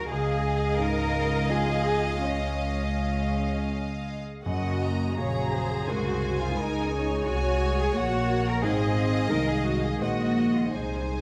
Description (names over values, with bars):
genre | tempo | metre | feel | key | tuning
cinematic | 79-90 BPM | 3/4 | rubato | Db major | A4 = 440 Hz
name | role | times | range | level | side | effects
warm studio violin section | melody | 0.0-11.2 s | F5 to Bb5 | -38 LUFS | equal | none
clear studio violin section | second line | 0.0-11.2 s | Bb4 to Eb5 | -36 LUFS | equal | none
dark studio viola section | accompaniment | 0.0-11.2 s | Gb3 to C4 | -34 LUFS | equal | none
warm concert grand piano | accompaniment | 0.0-11.2 s | Db2 to Eb5 | -34 LUFS | equal | none
warm studio cello section | bass | 0.0-11.2 s | Db4 to Bb4 | -33 LUFS | equal | none
warm studio double bass section | bass | 0.0-11.2 s | Gb1 to Db2 | -32 LUFS | equal | none
room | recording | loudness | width
moderate scoring stage reverb, RT60 1.8 s | dark, warm production | -27 LUFS | mono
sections
0.0-11.2 A section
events
none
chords
0.1 Dbadd9; 4.5 Gbadd9; 8.6 Ab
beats
| 0.11 0.80 1.49 | 2.23 2.98 3.72 | 4.46 5.18 5.88 | 6.57 7.27 7.96 | 8.63 9.31 10.01 | 10.74